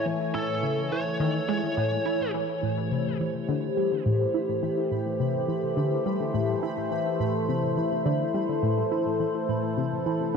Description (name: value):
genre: ambient, sequencer-driven space music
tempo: 105 BPM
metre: 4/4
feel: straight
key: A minor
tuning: A4 = 440 Hz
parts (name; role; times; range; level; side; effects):
- biting lead guitar; melody; 0.0-2.3 s; A4 to C#5; -32 LUFS; equal; overdrive, ping-pong delay
- sweeping resonant pad; sustained chords; 0.0-10.4 s; E3 to G#5; -27 LUFS; left 1 dB; chorus, phaser
- tight sequenced synth; riff; 0.1-10.4 s; A2 to E4; -28 LUFS; equal; chorus, ping-pong delay
- pulsing gated texture; texture; 2.6-10.4 s; B5; -45 LUFS; right 4 dB; chorus, built-in reverb
room: wet plate reverb, RT60 3.9 s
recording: dreamy mix soaked in reverb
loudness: -24 LUFS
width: side -6 dB against mid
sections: 0.0-2.6 A section; 2.6-10.4 B section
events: filter sweep on synth arpeggio sound 0.0-2.6, 2.6-10.4; fade-in on synth texture 2.6-10.4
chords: 0.0 Amaj7; 2.6 Am7